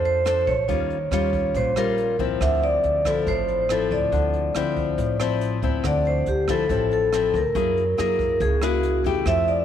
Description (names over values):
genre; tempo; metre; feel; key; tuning
bossa nova; 140 BPM; 4/4; straight; D minor; A4 = 439 Hz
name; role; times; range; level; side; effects
vibraphone with medium mallets; melody; 0.0-9.6 s; F#4 to E5; -22 LUFS; equal; tape echo
nylon-string guitar; accompaniment; 0.0-9.6 s; A2 to C5; -26 LUFS; left 8 dB; none
upright bass; bass; 0.0-9.6 s; A1 to F#2; -27 LUFS; right 1 dB; none
jazz brush drum kit; drums; 0.0-9.6 s; hi-hat, kick drum, rim click; -32 LUFS; right 4 dB; none
room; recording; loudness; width
light reverb, studio reverb; 1960s-style stereo; -20 LUFS; side -9 dB against mid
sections
0.0-5.8 A section; 5.8-9.6 A section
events
none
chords
0.0 Bbmaj9; 0.7 Eb9; 2.4 Dm9; 7.5 F#9